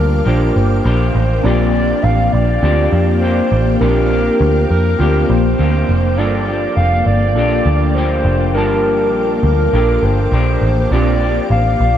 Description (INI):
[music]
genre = indie pop, bedroom pop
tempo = 101 BPM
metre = 4/4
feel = straight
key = unclear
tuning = A4 = 440 Hz
[part]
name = hollow clarinet-like synth lead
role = melody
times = 0.0-12.0 s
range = Bb4 to F5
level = -18 LUFS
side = equal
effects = wide subtle chorus, tape echo
[part]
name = electric guitar through a small old amp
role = accompaniment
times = 0.0-12.0 s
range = G2 to G4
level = -22 LUFS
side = left 4 dB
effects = lush chorus, warbly pitch drift
[part]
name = warbly lo-fi synth keys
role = accompaniment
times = 0.0-12.0 s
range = Bb3 to A5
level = -22 LUFS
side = right 4 dB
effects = chorus, cassette tape
[part]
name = ethereal airy pad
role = sustained chords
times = 0.0-12.0 s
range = Bb3 to D6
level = -22 LUFS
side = left 2 dB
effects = ensemble chorus, built-in reverb, phaser
[part]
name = vintage muted picked electric bass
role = bass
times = 0.0-12.0 s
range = F1 to F2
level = -15 LUFS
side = equal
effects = none
[sound]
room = moderate huge ambient reverb, RT60 8.5 s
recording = dreamy mix soaked in reverb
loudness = -12 LUFS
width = side -10 dB against mid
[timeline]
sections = 0.0-12.0 A section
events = none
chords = 0.0 Gm7; 10.9 Bb6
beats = 0.27 0.86 | 1.45 2.04 2.63 3.23 | 3.82 4.41 5.00 5.59 | 6.18 6.77 7.37 7.96 | 8.55 9.14 9.73 10.32 | 10.92 11.51